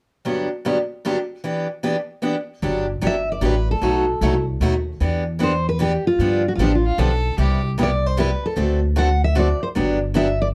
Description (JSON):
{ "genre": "acoustic string swing (jazz manouche)", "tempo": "152 BPM", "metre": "3/4", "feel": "swing 64% on 8ths", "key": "G major", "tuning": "A4 = 440 Hz", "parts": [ { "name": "picked steel-string acoustic guitar", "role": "accompaniment", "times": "0.2-10.3 s", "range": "G2 to A4", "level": "-24 LUFS", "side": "equal", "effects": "none" }, { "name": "upright bass", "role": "bass", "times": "2.6-10.5 s", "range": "G1 to G2", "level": "-24 LUFS", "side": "equal", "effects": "none" }, { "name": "picked steel-string acoustic guitar", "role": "melody", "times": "3.1-10.5 s", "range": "D4 to F#5", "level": "-24 LUFS", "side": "equal", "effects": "none" }, { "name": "clear violin", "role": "second line", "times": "6.9-7.7 s", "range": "F4 to A4", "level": "-29 LUFS", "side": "equal", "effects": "none" } ], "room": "light reverb", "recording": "dark, warm production", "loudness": "-21 LUFS", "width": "mono", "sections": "0.3-2.6 A section; 2.6-10.5 B section", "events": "none", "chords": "0.3 Gmaj7; 1.4 Em7; 2.6 Gmaj7; 3.8 B7; 5.0 Em7; 6.2 G7; 7.4 Cmaj7; 8.6 D7; 9.8 Gmaj7", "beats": "| 0.26 0.66 1.05 | 1.45 1.84 2.24 | 2.63 3.03 3.42 | 3.82 4.22 4.61 | 5.01 5.40 5.80 | 6.20 6.59 6.99 | 7.38 7.78 8.17 | 8.57 8.96 9.36 | 9.76 10.15" }